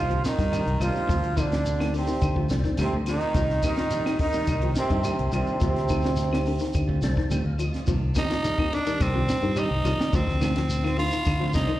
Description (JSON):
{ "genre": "afrobeat", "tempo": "106 BPM", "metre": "4/4", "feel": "straight", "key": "C dorian", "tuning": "A4 = 439 Hz", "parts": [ { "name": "bright trombone", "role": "melody", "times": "0.0-7.3 s", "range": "C4 to F4", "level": "-28 LUFS", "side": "right 2 dB", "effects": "plate reverb, slapback echo" }, { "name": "clear trombone", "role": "second line", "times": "0.0-7.3 s", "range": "C3 to F3", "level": "-35 LUFS", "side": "right 2 dB", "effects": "plate reverb, slapback echo" }, { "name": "raspy baritone saxophone", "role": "second line", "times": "0.0-7.3 s", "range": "C3 to F3", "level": "-37 LUFS", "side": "left 2 dB", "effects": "plate reverb, slapback echo" }, { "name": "percussive tonewheel organ", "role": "accompaniment", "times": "0.0-11.8 s", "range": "Eb3 to A5", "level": "-35 LUFS", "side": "left 1 dB", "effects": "slow rotary speaker, plate reverb, slapback echo" }, { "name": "fingered electric bass", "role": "bass", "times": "0.0-11.7 s", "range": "C2 to D3", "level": "-26 LUFS", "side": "equal", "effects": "none" }, { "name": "electric guitar through a small old amp", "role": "arpeggios", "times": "0.1-11.8 s", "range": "C3 to G3", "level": "-33 LUFS", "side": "left 5 dB", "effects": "spring reverb, plate reverb" }, { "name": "mellow electric guitar", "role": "stabs", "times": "0.1-11.6 s", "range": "Eb3 to G4", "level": "-36 LUFS", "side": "right 6 dB", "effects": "spring reverb, plate reverb, analog delay" }, { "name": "compact cocktail drum kit", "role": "drums", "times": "0.1-11.7 s", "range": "hi-hat, kick drum, ride cymbal, snare drum", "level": "-28 LUFS", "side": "equal", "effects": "none" }, { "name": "shekere", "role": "percussion", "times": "0.2-11.8 s", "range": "none", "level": "-36 LUFS", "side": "left 1 dB", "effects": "none" }, { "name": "claves", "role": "percussion", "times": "0.5-11.4 s", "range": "none", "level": "-40 LUFS", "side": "left 1 dB", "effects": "none" }, { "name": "growling tenor saxophone", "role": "melody", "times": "8.2-11.8 s", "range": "C4 to F4", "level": "-27 LUFS", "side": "right 1 dB", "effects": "plate reverb, slapback echo" } ], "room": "light reverb", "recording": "live gig heard through the venue's PA, recital hall reverb", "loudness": "-22 LUFS", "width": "side -14 dB against mid", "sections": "0.0-7.9 A section; 7.9-11.8 B section", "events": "tonewheel organ fill 6.7-7.9; tenor saxophone solo 7.9-11.8", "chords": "0.0 Cm7; 1.1 Dm7; 3.4 Cm7; 5.6 Dm7; 7.9 Cm7; 10.1 Dm7", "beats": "0.53 | 1.10 1.66 2.23 2.79 | 3.36 3.92 4.49 5.05 | 5.62 6.18 6.74 7.31 | 7.87 8.44 9.00 9.57 | 10.13 10.70 11.26" }